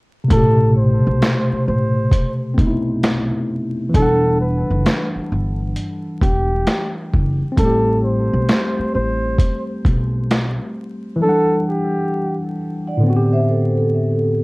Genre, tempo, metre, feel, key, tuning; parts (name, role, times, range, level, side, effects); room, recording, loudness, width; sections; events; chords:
lo-fi hip hop; 66 BPM; 4/4; swing 66% on 16ths; A dorian; A4 = 440 Hz
tine electric piano; accompaniment; 0.2-14.4 s; A2 to F#5; -20 LUFS; equal; medium stereo tremolo, cassette tape, low-pass filter
breathy flugelhorn; melody; 0.3-12.4 s; G4 to C5; -21 LUFS; equal; low-pass filter
upright bass; bass; 0.3-10.6 s; E1 to B1; -20 LUFS; equal
boom bap sampler-style drum kit; drums; 0.3-10.6 s; hi-hat, kick drum, snare drum; -18 LUFS; equal
vibraphone with soft mallets; second line; 12.9-14.4 s; A4 to F#5; -22 LUFS; right 1 dB; low-pass filter, tape echo
moderate studio reverb, RT60 0.6 s; worn, warbling old tape, cassette tape, vinyl crackle, warbly pitch drift; -15 LUFS; side -25 dB against mid
0.3-14.4 A section
0.3 Am9; 3.9 Em9; 7.6 Am9; 11.2 Em9; 13.0 Am11